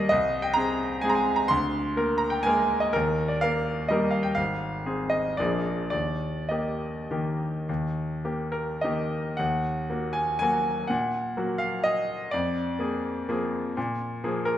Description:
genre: classical, piano waltz.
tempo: 100-134 BPM.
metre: 3/4.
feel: rubato.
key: Eb major, Eb minor from 9.4 s.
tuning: A4 = 440 Hz.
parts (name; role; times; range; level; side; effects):
bright grand piano; solo; 0.0-14.6 s; Ab1 to C6; -24 LUFS; equal; none.
room: moderate recital hall reverb, RT60 1.6 s.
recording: none.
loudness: -24 LUFS.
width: side -11 dB against mid.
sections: 0.0-9.4 A section; 9.4-14.6 B section.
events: none.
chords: 0.1 Ab/C; 1.5 Bb7/D; 2.9 Eb; 4.4 Ab; 5.4 Bb7; 5.9 Eb; 9.4 Ebm; 12.3 Bb7/F.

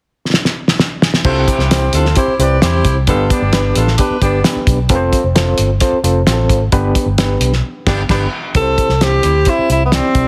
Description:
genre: uptempo 1960s-style soul.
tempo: 132 BPM.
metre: 4/4.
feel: straight.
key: C major.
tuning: A4 = 443 Hz.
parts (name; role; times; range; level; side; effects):
cloth-damped thuddy drum kit; drums; 0.3-10.3 s; crash cymbal, hi-hat, kick drum, snare drum; -18 LUFS; equal; none.
clear saxophone section; second line; 1.2-4.4, 7.9-9.6 s; B3 to D5; -23 LUFS; equal; none.
overdriven reed electric piano; accompaniment; 1.2-10.3 s; G2 to B5; -20 LUFS; equal; fast tremolo.
vintage muted fingered electric bass; bass; 1.2-10.2 s; F1 to E2; -18 LUFS; equal; none.
breathy tenor saxophone; melody; 8.6-10.3 s; B3 to A4; -17 LUFS; equal; none.
room: light reverb, studio ambience.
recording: heavily compressed radio sound, multiband compression.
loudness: -14 LUFS.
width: mono.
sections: 0.0-1.2 A section; 1.2-8.6 B section; 8.6-10.3 C section.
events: drum fill 0.3-1.2; band accent 7.6-8.6.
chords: 0.0 N.C.; 1.2 C; 3.1 G; 4.9 F; 6.7 G; 8.6 C.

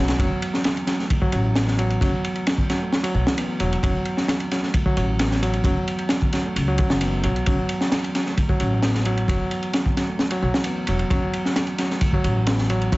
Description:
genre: breakbeat, breaks.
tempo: 132 BPM.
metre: 4/4.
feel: straight.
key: unclear.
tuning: A4 = 440 Hz.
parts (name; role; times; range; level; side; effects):
overdriven reed electric piano; riff; 0.0-13.0 s; E3 to B3; -25 LUFS; right 1 dB; ping-pong delay.
upright bass; bass; 0.0-13.0 s; E1 to C#2; -23 LUFS; equal; none.
crunchy breakbeat drum kit; drums; 0.1-13.0 s; kick drum, ride cymbal, snare drum; -22 LUFS; equal; none.
room: small room ambience.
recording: vinyl crackle, nothing above 7.9 kHz.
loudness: -19 LUFS.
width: side -21 dB against mid.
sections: 0.0-13.0 A section.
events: none.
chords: 0.0 F#m.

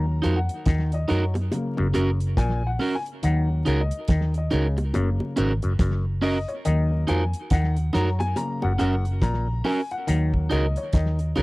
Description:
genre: roots reggae.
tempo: 70 BPM.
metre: 4/4.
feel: swing 61% on 16ths.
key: Eb minor.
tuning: A4 = 440 Hz.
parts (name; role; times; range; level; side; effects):
auto-wah clav; riff; 0.0-11.4 s; Gb2 to Gb3; -30 LUFS; left 3 dB; none.
dark upright piano; stabs; 0.0-11.4 s; Db3 to Bb5; -30 LUFS; left 2 dB; none.
vintage muted fingered electric bass; bass; 0.0-11.4 s; Gb1 to Gb2; -23 LUFS; equal; none.
electric guitar at the edge of break-up; accompaniment; 0.2-11.4 s; Db4 to Bb4; -26 LUFS; right 3 dB; tape echo.
damped 70s drum kit; drums; 0.2-11.4 s; hi-hat, kick drum, snare drum; -24 LUFS; equal; slapback echo.
bongos; percussion; 1.1-11.4 s; none; -31 LUFS; right 1 dB; none.
room: little or no reverb.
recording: dry, close 1970s-style studio recording, vinyl crackle.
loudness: -21 LUFS.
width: side -21 dB against mid.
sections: 0.0-11.4 A section.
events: upright piano solo 0.0-11.4.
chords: 0.0 Ebm; 1.5 Gb; 3.2 Ebm; 4.9 Gb; 6.7 Ebm; 8.4 Gb; 10.1 Ebm.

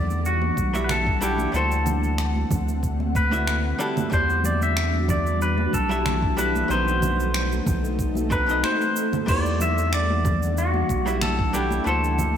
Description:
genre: sunset chillout.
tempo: 93 BPM.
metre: 4/4.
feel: swing 53% on 16ths.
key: E minor.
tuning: A4 = 440 Hz.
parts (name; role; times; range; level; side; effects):
clean electric guitar; melody; 0.0-12.4 s; F#4 to E5; -25 LUFS; left 1 dB; spring reverb, digital delay.
archtop guitar, miked and amplified; accompaniment; 0.0-12.4 s; G3 to E5; -31 LUFS; equal; auto-pan.
ethereal airy pad; sustained chords; 0.0-12.4 s; D3 to F#5; -28 LUFS; left 1 dB; ensemble chorus, built-in reverb.
round analog bass; bass; 0.0-12.4 s; B1 to E2; -25 LUFS; equal; tube saturation.
deep house drum kit; drums; 0.1-12.3 s; cabasa, congas, crash cymbal, finger snaps; -31 LUFS; right 4 dB; gated reverb.
congas; percussion; 0.4-12.3 s; none; -33 LUFS; left 1 dB; none.
electronic kick drum; drums; 0.6-11.5 s; none; -27 LUFS; equal; none.
room: moderate lush hall reverb, RT60 2.1 s.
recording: bright 1980s-style digital production.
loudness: -20 LUFS.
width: side -9 dB against mid.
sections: 0.0-12.4 A section.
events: none.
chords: 0.0 Em9; 1.5 D7; 3.8 Em9; 6.7 B7b9; 9.3 Em9; 11.9 D7.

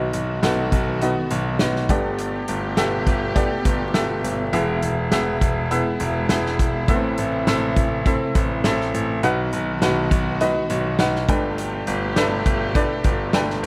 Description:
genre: piano-driven pop.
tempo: 102 BPM.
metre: 4/4.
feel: swing 56% on 16ths.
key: unclear.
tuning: A4 = 445 Hz.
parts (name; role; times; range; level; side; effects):
bright upright piano; accompaniment; 0.0-13.7 s; G2 to G5; -25 LUFS; equal; none.
warm symphonic string section; sustained chords; 0.0-13.7 s; B2 to G4; -32 LUFS; equal; none.
bright concert grand piano; bass; 0.0-13.7 s; E1 to B1; -27 LUFS; equal; none.
natural country drum kit; drums; 0.1-13.7 s; hi-hat, kick drum, snare drum; -25 LUFS; equal; none.
room: light reverb, small room reverb.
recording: vinyl crackle.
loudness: -21 LUFS.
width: mono.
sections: 0.0-13.7 A section.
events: none.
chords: 0.0 B; 1.9 Gadd9; 4.5 E; 6.9 Am; 9.2 B; 11.3 Gadd9.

